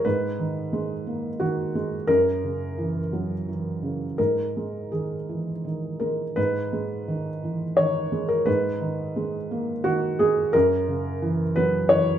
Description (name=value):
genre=neoclassical minimalist piano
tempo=87 BPM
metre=3/4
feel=rubato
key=G# minor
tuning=A4 = 441 Hz
part: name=felt-muted upright piano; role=solo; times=0.0-12.2 s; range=F#2 to C#5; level=-22 LUFS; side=equal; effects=none
room=wet studio reverb, RT60 0.7 s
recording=rough home demo mix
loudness=-23 LUFS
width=side -10 dB against mid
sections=0.0-6.4 A section; 6.4-12.2 A section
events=none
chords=0.0 G#m; 2.1 F#7; 4.2 G#5; 6.4 G#m; 10.5 F#7